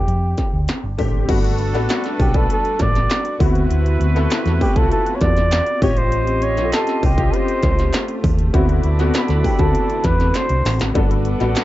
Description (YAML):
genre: polished 1980s jazz-funk pop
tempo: 99 BPM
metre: 4/4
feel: straight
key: G major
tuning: A4 = 440 Hz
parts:
  - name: breathy flugelhorn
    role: melody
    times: 0.0-10.8 s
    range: G4 to D5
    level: -22 LUFS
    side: equal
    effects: none
  - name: clear concert grand piano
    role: accompaniment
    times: 0.0-11.6 s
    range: A3 to A4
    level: -23 LUFS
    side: left 3 dB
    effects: ensemble chorus
  - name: hollow-body short-scale fingered electric bass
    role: bass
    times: 0.0-11.5 s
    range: G1 to F2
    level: -19 LUFS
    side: equal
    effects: none
  - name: industrial drum kit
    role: drums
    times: 0.1-11.6 s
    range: crash cymbal, hi-hat, kick drum, snare drum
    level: -20 LUFS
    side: equal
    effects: distortion
  - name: mellow horn section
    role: second line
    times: 1.3-11.6 s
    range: D4 to B#5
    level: -28 LUFS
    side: right 4 dB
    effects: none
  - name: warm studio string section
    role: sustained chords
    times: 1.3-11.6 s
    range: C3 to B4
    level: -30 LUFS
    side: equal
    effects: none
  - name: group handclap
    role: percussion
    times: 1.9-11.6 s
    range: none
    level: -32 LUFS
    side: right 6 dB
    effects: none
room: little or no reverb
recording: dark, warm production, nothing above 7.7 kHz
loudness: -15 LUFS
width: side -15 dB against mid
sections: 0.0-1.3 A section; 1.3-11.6 B section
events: drum fill 10.4-11.0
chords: 0.0 F69; 1.3 Gmaj9; 3.4 D13; 5.8 A7alt; 8.5 D13; 11.0 Gmaj9